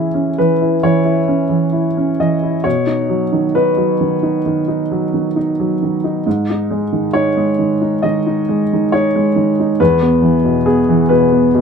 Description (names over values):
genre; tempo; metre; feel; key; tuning
neoclassical minimalist piano; 67 BPM; 4/4; rubato; C# minor; A4 = 440 Hz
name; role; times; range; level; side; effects
warm upright piano; solo; 0.0-11.6 s; E2 to D#5; -13 LUFS; equal; none
room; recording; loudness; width
light reverb; minimal, uncompressed stereo recording; -13 LUFS; side -6 dB against mid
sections
0.0-11.6 A section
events
none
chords
0.0 C#m; 2.6 B; 6.3 G#5; 9.8 E5